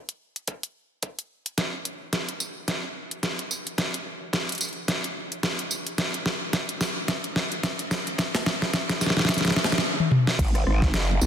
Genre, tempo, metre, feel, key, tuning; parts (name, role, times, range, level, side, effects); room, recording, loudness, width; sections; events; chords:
glitch hop; 109 BPM; 4/4; swing 57% on 16ths; G# minor; A4 = 440 Hz
pop drum kit; drums; 0.1-11.3 s; crash cymbal, hi-hat, rim click, snare drum, tambourine, toms; -24 LUFS; equal; overdrive
electronic kick drum; drums; 0.5-10.9 s; -29 LUFS; equal; overdrive, high-pass filter on kick, high-pass filter on room
growl bass; bass; 10.4-11.3 s; F#1 to B1; -22 LUFS; equal; chorus, overdrive
moderate lush hall reverb, RT60 2.0 s; dense, heavily limited modern master; -24 LUFS; side -9 dB against mid
0.0-10.4 A section
build-up 0.0-10.4; drum fill 1.6-9.8, 10.0-10.4